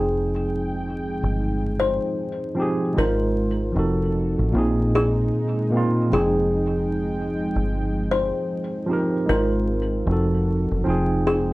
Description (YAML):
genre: lo-fi hip hop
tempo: 76 BPM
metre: 4/4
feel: swing 60% on 16ths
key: F minor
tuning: A4 = 441 Hz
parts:
  - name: kalimba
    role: melody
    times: 0.0-11.5 s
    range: Ab4 to C5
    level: -26 LUFS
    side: left 2 dB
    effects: low-pass filter, analog delay
  - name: tine electric piano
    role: accompaniment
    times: 0.0-11.5 s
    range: Bb2 to G5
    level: -23 LUFS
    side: right 1 dB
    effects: medium stereo tremolo, cassette tape, low-pass filter
  - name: dark analog pad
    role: sustained chords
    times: 0.3-11.5 s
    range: F3 to G5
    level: -31 LUFS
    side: equal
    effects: chorus, low-pass filter
  - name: deep dub fingered electric bass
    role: bass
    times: 0.0-11.5 s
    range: F1 to Bb1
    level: -25 LUFS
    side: equal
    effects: none
room: moderate small room reverb, RT60 0.6 s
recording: worn, warbling old tape, cassette tape, vinyl crackle, warbly pitch drift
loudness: -20 LUFS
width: side -19 dB against mid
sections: 0.0-11.5 A section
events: none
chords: 0.0 Fm9; 3.0 Ab69; 3.8 F7b9; 4.5 Bb7sus4; 6.1 Fm9; 9.3 Ab69; 10.1 F7b9; 10.9 Fm7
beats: 0.60 1.39 2.18 | 2.97 3.75 4.54 5.33 | 6.12 6.91 7.70 8.49 | 9.28 10.07 10.86